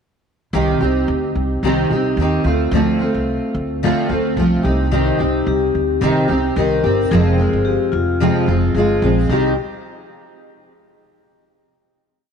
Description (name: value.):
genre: acoustic pop.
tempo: 110 BPM.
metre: 4/4.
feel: swing 55% on 16ths.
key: C minor.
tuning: A4 = 440 Hz.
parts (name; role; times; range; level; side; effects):
fingerpicked steel-string acoustic guitar; accompaniment; 0.5-9.5 s; F2 to G4; -17 LUFS; right 1 dB; double-tracked left and right.
upright bass; bass; 0.5-9.5 s; F1 to Eb2; -20 LUFS; right 1 dB; none.
vibraphone with soft mallets; second line; 4.9-9.6 s; Eb4 to Bb4; -21 LUFS; left 10 dB; none.
room: light reverb, small room ambience.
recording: none.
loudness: -15 LUFS.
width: side -7 dB against mid.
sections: 0.5-9.3 verse; 9.3-11.5 final chord.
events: none.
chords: 0.5 Cm; 2.5 Dm7; 4.6 Cm; 7.1 Fm; 9.3 Cm.